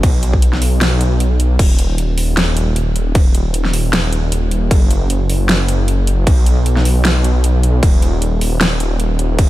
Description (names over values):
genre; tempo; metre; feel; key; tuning
future bass; 154 BPM; 4/4; swing 54% on 16ths, half-time; Eb minor; A4 = 440 Hz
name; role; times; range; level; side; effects
wide detuned saw bass; bass; 0.0-9.5 s; Eb1 to Cb2; -14 LUFS; equal; chorus, sidechain pumping
big-room dance drum kit; drums; 0.0-9.5 s; crash cymbal, hi-hat, snare drum; -20 LUFS; equal; overdrive
electronic kick drum; drums; 0.0-9.5 s; none; -12 LUFS; equal; overdrive
room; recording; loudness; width
digital ambience; none; -12 LUFS; side -16 dB against mid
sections
0.0-9.5 A section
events
none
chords
none